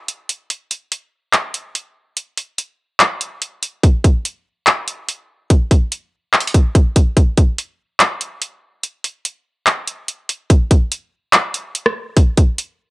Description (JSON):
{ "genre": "hip hop", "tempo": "144 BPM", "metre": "4/4", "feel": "half-time", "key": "none", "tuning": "none", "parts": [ { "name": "trap drum kit", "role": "drums", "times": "0.1-12.7 s", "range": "handclaps, hi-hat, kick drum, rim click", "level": "-13 LUFS", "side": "equal", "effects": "cassette tape" } ], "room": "little or no reverb", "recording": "home recording on cassette", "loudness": "-15 LUFS", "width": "side -21 dB against mid", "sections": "0.0-10.5 A section; 10.5-12.9 B section", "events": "break 0.0-3.8, 8.8-10.5", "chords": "none" }